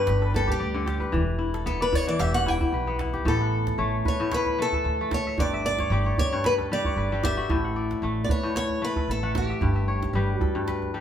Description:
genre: west african traditional, West African string and xylophone music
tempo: 113 BPM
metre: 4/4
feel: swing 54% on 16ths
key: unclear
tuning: A4 = 437 Hz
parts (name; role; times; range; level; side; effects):
- picked steel-string acoustic guitar; melody; 0.0-10.9 s; G4 to G5; -28 LUFS; equal; none
- kora; arpeggios; 0.0-11.0 s; G2 to F#5; -28 LUFS; left 3 dB; none
- upright bass; bass; 0.1-10.4 s; E1 to D2; -28 LUFS; right 1 dB; none
- djembe; percussion; 0.1-11.0 s; none; -30 LUFS; right 2 dB; none
room: moderate studio reverb, RT60 0.7 s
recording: band playing live in one room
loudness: -23 LUFS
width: side -9 dB against mid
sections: 0.0-3.3 A section; 3.3-11.0 B section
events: steel-string acoustic guitar solo 0.0-3.3; kora fill 5.4-7.5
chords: 0.0 G; 1.1 Em; 3.3 A; 5.4 G5; 7.5 A; 9.6 G

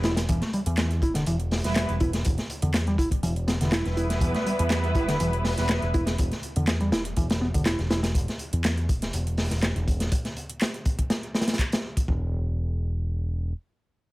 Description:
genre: breakbeat, breaks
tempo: 122 BPM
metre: 4/4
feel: swing 53% on 16ths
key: E minor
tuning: A4 = 442 Hz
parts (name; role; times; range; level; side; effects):
- picked electric bass; riff; 0.0-8.0 s; D3 to E4; -28 LUFS; equal; digital delay
- overdriven picked electric bass; bass; 0.0-13.5 s; E1 to E2; -27 LUFS; equal; none
- crunchy breakbeat drum kit; drums; 0.0-12.2 s; hi-hat, kick drum, snare drum; -26 LUFS; equal; none
- garage drum kit; drums; 0.2-12.1 s; handclaps, hi-hat; -35 LUFS; right 1 dB; overdrive
- muted studio string section; stabs; 1.6-5.8 s; G3 to B4; -30 LUFS; right 1 dB; vintage 12-bit sampler grit, digital delay
room: little or no reverb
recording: none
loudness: -23 LUFS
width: side -19 dB against mid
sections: 0.0-12.1 A section; 12.1-14.1 B section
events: drop 0.0-12.1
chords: 0.0 Em; 12.1 N.C.

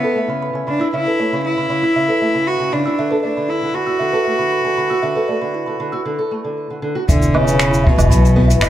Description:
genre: folktronica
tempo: 117 BPM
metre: 4/4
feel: straight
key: unclear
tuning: A4 = 441 Hz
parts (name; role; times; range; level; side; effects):
- clear cello; melody; 0.0-8.6 s; B2 to F#4; -18 LUFS; equal; plate reverb, digital delay
- music box; second line; 0.0-8.7 s; E4 to E6; -23 LUFS; right 3 dB; plate reverb, digital delay
- fingerpicked steel-string acoustic guitar; arpeggios; 0.0-8.7 s; C#3 to A4; -22 LUFS; left 1 dB; low-pass filter, plate reverb, digital delay
- upright bass; bass; 7.1-8.7 s; E1 to B1; -14 LUFS; equal; none
- jazz brush drum kit; drums; 7.1-8.7 s; finger snaps, hi-hat, shaker, woodblock; -20 LUFS; right 1 dB; low-pass filter on hats, low-pass filter on perc, low-pass filter on snare, low-pass filter on room
- kick drum; drums; 7.1-8.5 s; none; -16 LUFS; equal; none
room: moderate small room reverb, RT60 0.5 s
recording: none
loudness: -15 LUFS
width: side -12 dB against mid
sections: 0.0-7.1 A section; 7.1-8.7 B section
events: break 6.1-7.1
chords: 0.0 A; 3.0 D; 7.1 E

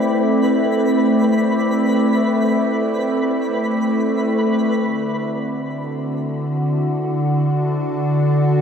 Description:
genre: ambient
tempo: free time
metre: none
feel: none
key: unclear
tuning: A4 = 440 Hz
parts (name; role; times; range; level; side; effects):
- evolving wavetable pad; sustained chords; 0.0-8.6 s; D3 to A5; -17 LUFS; equal; chorus, built-in reverb
- soft synth bell; arpeggios; 0.0-5.1 s; none; barely audible; none; none
- twinkling granular texture; texture; 0.0-4.8 s; B4 to B5; -26 LUFS; equal; built-in reverb
room: wet spring reverb, RT60 2.6 s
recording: echo-heavy mix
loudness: -16 LUFS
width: side -7 dB against mid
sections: 0.0-4.8 A section; 4.8-8.6 B section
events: none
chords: 0.0 Am7; 4.8 D

